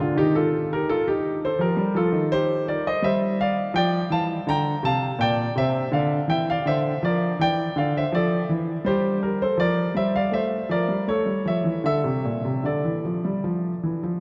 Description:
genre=classical, baroque-style suite movement for grand piano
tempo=82 BPM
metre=4/4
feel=rubato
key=D minor from 3.0 s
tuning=A4 = 441 Hz
part: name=warm concert grand piano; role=solo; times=0.0-14.2 s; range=Bb2 to Bb5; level=-23 LUFS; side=equal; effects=none
room=wet cathedral reverb, RT60 4.7 s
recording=dark, warm production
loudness=-23 LUFS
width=mono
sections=0.0-14.2 A section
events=none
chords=0.2 Eb; 3.0 Gm; 5.9 Dm; 8.8 Gm; 11.1 A7; 11.9 Dm

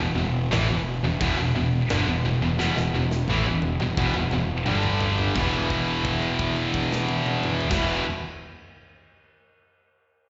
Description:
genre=heavy metal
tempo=87 BPM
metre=4/4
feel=straight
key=E minor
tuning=A4 = 440 Hz
part: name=high-gain distorted guitar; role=riff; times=0.0-8.0 s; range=E2 to G3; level=-30 LUFS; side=equal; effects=distortion
part: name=tight distorted guitar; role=riff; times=0.0-8.0 s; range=E2 to G3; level=-29 LUFS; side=equal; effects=distortion, slapback echo
part: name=fuzz picked electric bass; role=bass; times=0.0-8.0 s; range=E1 to A1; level=-29 LUFS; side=equal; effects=overdrive
part: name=tight metal drum kit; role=drums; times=0.5-7.9 s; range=crash cymbal, hi-hat, kick drum, snare drum, toms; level=-35 LUFS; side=equal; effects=none
room=light reverb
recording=live gig heard through the venue's PA, recital hall reverb, nothing above 7.8 kHz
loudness=-24 LUFS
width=mono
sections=0.0-5.4 A section; 5.4-8.1 B section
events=drum fill 2.6-5.4; held note 5.4-7.7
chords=0.0 E5; 4.7 G5; 5.4 E5

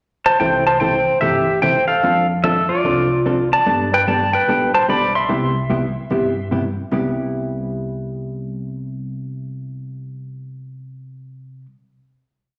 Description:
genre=country, western swing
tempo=148 BPM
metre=4/4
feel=swing 64% on 8ths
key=C major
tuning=A4 = 442 Hz
part: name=pedal steel guitar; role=melody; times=0.3-6.5 s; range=F4 to C6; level=-18 LUFS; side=equal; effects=none
part: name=hollow-body jazz guitar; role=accompaniment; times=0.4-11.7 s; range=C3 to A4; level=-25 LUFS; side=equal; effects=none
part: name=upright bass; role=bass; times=0.4-11.6 s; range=G1 to G2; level=-30 LUFS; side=equal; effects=none
room=wet large studio reverb, RT60 1.3 s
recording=none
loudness=-18 LUFS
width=mono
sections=0.0-0.4 pickup bar; 0.4-6.9 A section; 6.9-10.1 final chord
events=none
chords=0.4 C6; 2.0 F6; 3.7 Gadd9; 5.3 Cmaj7

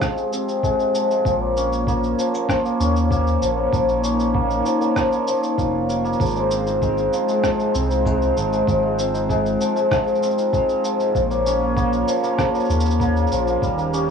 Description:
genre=folktronica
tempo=97 BPM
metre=4/4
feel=straight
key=unclear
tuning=A4 = 444 Hz
part: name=warm analog pad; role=sustained chords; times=0.0-14.1 s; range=Eb3 to Db5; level=-24 LUFS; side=right 1 dB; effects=chorus, plate reverb
part: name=hammered dulcimer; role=arpeggios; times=0.0-14.1 s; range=F3 to Bb4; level=-20 LUFS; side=left 1 dB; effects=low-pass filter, tape echo, plate reverb
part: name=electronic kick drum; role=drums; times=0.0-13.7 s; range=none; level=-26 LUFS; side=equal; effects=studio reverb, cassette tape
part: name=electronic rim click and cabasa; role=drums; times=0.0-14.1 s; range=none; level=-31 LUFS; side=right 1 dB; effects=studio reverb, cassette tape
part: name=round analog bass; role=bass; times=1.3-14.1 s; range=Eb1 to Eb2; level=-24 LUFS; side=equal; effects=none
part: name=vibraphone with soft mallets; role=second line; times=6.2-14.1 s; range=G4 to Ab4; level=-30 LUFS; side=left 4 dB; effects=tape echo, plate reverb
room=wet booth ambience, RT60 0.2 s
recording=home recording on cassette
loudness=-18 LUFS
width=side -6 dB against mid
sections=0.0-14.1 A section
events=filter sweep on hammered dulcimer 0.0-14.1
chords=0.0 Ab6; 1.3 Bbm; 6.2 Ab6; 11.2 Bbm

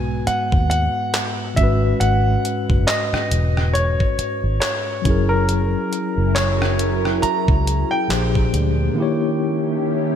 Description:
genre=contemporary R&B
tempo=69 BPM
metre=4/4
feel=swing 58% on 16ths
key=unclear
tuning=A4 = 439 Hz
part: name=clear grand piano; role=melody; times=0.0-10.2 s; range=A#4 to A#5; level=-24 LUFS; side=right 1 dB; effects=ping-pong delay
part: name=tine electric piano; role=accompaniment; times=0.0-10.2 s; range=G#2 to C#5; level=-23 LUFS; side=left 2 dB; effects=fast stereo tremolo
part: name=vintage muted fingered electric bass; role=bass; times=0.0-8.9 s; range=E1 to D#2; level=-20 LUFS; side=equal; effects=none
part: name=detuned 8-bit digital drum machine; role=drums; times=0.3-8.8 s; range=handclaps, hi-hat, kick drum, rim click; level=-22 LUFS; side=equal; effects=gated reverb
part: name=lush unison pad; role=sustained chords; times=5.9-10.2 s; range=D#3 to A#4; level=-24 LUFS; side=right 1 dB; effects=chorus, phaser, sidechain pumping
room=light reverb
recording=bright 1980s-style digital production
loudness=-17 LUFS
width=side -8 dB against mid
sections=0.0-10.2 A section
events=tine electric piano fill 9.8-10.2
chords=0.0 G#m7; 1.6 E69; 5.1 F#9; 8.1 A#13; 9.0 D#7b9

